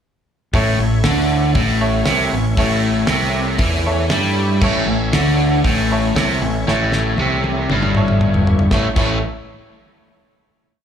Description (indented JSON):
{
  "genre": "classic rock",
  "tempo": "118 BPM",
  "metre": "4/4",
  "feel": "straight",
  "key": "A major",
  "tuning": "A4 = 440 Hz",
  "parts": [
    { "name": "clear grand piano", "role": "accompaniment", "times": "0.5-9.2 s", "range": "E4 to C#5", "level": "-25 LUFS", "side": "right 1 dB", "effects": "slapback echo" },
    { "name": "overdriven tonewheel organ", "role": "sustained chords", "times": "0.5-9.1 s", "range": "A3 to C#5", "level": "-28 LUFS", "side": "equal", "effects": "slow rotary speaker, chorus vibrato" },
    { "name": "biting overdriven guitar", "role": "riff", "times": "0.5-9.2 s", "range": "G2 to A3", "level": "-18 LUFS", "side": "equal", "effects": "none" },
    { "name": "growling fingered electric bass", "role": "bass", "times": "0.5-9.2 s", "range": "G1 to G2", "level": "-20 LUFS", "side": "equal", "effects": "overdrive" },
    { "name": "damped 70s drum kit", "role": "drums", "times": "0.5-9.1 s", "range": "crash cymbal, hi-hat, kick drum, snare drum, toms", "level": "-22 LUFS", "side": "equal", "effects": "none" }
  ],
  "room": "studio reverb",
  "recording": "live gig heard through the venue's PA, club reverb",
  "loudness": "-14 LUFS",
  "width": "side -8 dB against mid",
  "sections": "0.5-8.7 riff; 8.7-10.7 final chord",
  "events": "drum fill 6.7-8.7",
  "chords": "0.5 A",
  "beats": "| 0.55 1.05 1.56 2.07 | 2.58 3.09 3.60 4.12 | 4.63 5.14 5.65 6.16 | 6.67 7.18 7.70 8.21 | 8.71"
}